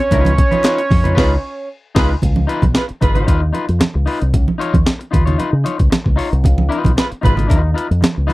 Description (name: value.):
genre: funk.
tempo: 114 BPM.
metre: 4/4.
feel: straight.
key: unclear.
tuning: A4 = 440 Hz.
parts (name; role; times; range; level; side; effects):
fat analog lead; melody; 0.0-1.7 s; Db5; -18 LUFS; right 2 dB; none.
clean electric guitar; accompaniment; 0.0-8.3 s; Eb4 to Db5; -21 LUFS; left 4 dB; none.
fingered electric bass with an envelope filter; bass; 0.1-8.3 s; Ab1 to Db3; -16 LUFS; equal; none.
breakbeat sampler-style drum kit; drums; 0.1-8.3 s; crash cymbal, hi-hat, kick drum, snare drum; -16 LUFS; equal; none.
congas; percussion; 0.1-8.3 s; none; -22 LUFS; right 4 dB; none.
group handclap; percussion; 0.6-0.8 s; none; -30 LUFS; left 5 dB; none.
mellow horn section; second line; 1.2-3.4, 7.0-7.3 s; F4 to Cb5; -21 LUFS; right 2 dB; none.
room: little or no reverb.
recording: dry, close 1970s-style studio recording.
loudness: -13 LUFS.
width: side -19 dB against mid.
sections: 0.0-2.2 A section; 2.2-8.3 B section.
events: band accent 0.1-2.2.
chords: 0.1 Db9.